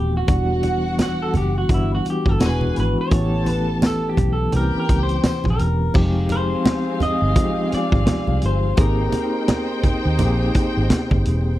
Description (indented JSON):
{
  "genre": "lush 1970s-style soul",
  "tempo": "85 BPM",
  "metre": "4/4",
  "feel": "swing 58% on 16ths",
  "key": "E dorian, F dorian from 6.0 s",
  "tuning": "A4 = 440 Hz",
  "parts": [
    { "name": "electric guitar through a small old amp", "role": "melody", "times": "0.0-10.2 s", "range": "E4 to Eb5", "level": "-26 LUFS", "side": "equal", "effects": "none" },
    { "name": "tine electric piano", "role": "accompaniment", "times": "0.0-11.6 s", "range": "E3 to Ab4", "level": "-23 LUFS", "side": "left 2 dB", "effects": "fast tremolo" },
    { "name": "vintage muted fingered electric bass", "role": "bass", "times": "0.0-11.6 s", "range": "D#1 to Eb2", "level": "-21 LUFS", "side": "equal", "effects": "none" },
    { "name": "dark symphonic string section", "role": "second line", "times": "0.3-11.6 s", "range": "C4 to A5", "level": "-29 LUFS", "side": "right 1 dB", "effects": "none" },
    { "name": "vintage drum kit", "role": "drums", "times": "0.3-11.4 s", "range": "crash cymbal, hi-hat, kick drum, snare drum", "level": "-20 LUFS", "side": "equal", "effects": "none" },
    { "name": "congas", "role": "percussion", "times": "0.3-11.2 s", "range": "none", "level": "-26 LUFS", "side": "right 3 dB", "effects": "none" },
    { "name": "tambourine", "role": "percussion", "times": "1.0-5.4 s", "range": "none", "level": "-40 LUFS", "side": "left 7 dB", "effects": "none" }
  ],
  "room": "little or no reverb",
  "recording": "dry, close 1970s-style studio recording",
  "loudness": "-17 LUFS",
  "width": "side -15 dB against mid",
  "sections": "0.0-6.0 A section; 6.0-11.6 B section",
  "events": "clean electric guitar solo 0.0-6.0",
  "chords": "0.3 Em9; 2.4 E9; 3.1 A9; 4.5 C7b9; 6.0 Fm9; 8.8 Abmaj9"
}